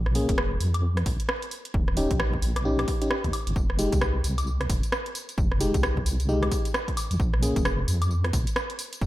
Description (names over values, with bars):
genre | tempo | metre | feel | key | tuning
UK garage, two-step garage | 132 BPM | 4/4 | swing 61% on 16ths | unclear | A4 = 440 Hz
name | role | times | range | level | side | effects
deep soft wobble bass | bass | 0.0-9.1 s | Eb1 to F2 | -26 LUFS | equal | chorus
house drum kit | drums | 0.1-9.1 s | hi-hat, rim click, tambourine, woodblock | -30 LUFS | right 1 dB | overdrive
FM electric piano | stabs | 0.2-7.6 s | Ab3 to Ab4 | -29 LUFS | left 1 dB | chorus, diffuse ambient delay
electronic kick drum | drums | 0.3-9.1 s | none | -27 LUFS | equal | none
room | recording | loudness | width
light reverb, digital ambience | none | -23 LUFS | side -16 dB against mid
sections
0.0-9.1 A section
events
none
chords
0.0 Bbm7; 1.5 Eb7; 3.6 Fm9; 7.2 Bbm7